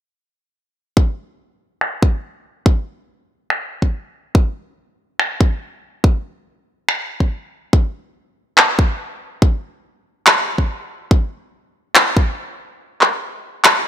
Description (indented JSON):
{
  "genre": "future bass",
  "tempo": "142 BPM",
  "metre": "4/4",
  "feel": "half-time",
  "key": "none",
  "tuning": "none",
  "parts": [
    { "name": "electronic kick drum", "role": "drums", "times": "1.0-12.3 s", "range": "none", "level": "-14 LUFS", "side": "equal", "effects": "none" },
    { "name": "electronic finger snaps and handclaps", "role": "drums", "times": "1.8-13.7 s", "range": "none", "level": "-13 LUFS", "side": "equal", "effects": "overdrive, low-pass filter on snare, low-pass filter on room" }
  ],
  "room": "light reverb",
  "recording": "none",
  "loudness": "-16 LUFS",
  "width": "side -10 dB against mid",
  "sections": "1.0-13.9 A section",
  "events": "kick drops out 12.8-13.9",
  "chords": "none"
}